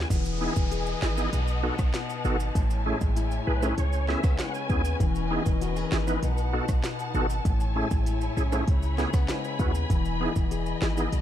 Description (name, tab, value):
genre	dancehall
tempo	98 BPM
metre	4/4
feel	straight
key	E major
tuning	A4 = 438 Hz
part	bright tonewheel organ	accompaniment	0.0-11.1 s	A3 to G#5	-32 LUFS	right 2 dB	chorus vibrato, fast rotary speaker
part	nylon-string guitar	arpeggios	0.0-11.2 s	A2 to G#4	-32 LUFS	left 8 dB	ping-pong delay
part	warm 808-style bass	bass	0.0-11.2 s	E1 to D#2	-28 LUFS	equal	none
part	afro-pop drum kit	drums	0.0-11.2 s	hi-hat, kick drum, rim click, snare drum	-28 LUFS	equal	none
part	noise sweep and downlifter	sound effects	0.1-5.0 s	none	-41 LUFS	equal	none
part	warm studio string section	sustained chords	0.1-11.2 s	E3 to B5	-34 LUFS	left 2 dB	sidechain pumping
part	maracas and timbales	percussion	0.1-11.2 s	none	-41 LUFS	right 7 dB	none
room	small room reverb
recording	dark, warm production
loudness	-24 LUFS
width	side -11 dB against mid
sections	0.1-11.2 A section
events	tonewheel organ fill 3.2-5.0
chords	0.1 Emaj7; 1.3 B7; 2.6 Amaj7; 3.8 C#m7; 5.0 Emaj7; 6.2 B7; 7.5 Amaj7; 8.7 C#m7; 9.9 Emaj7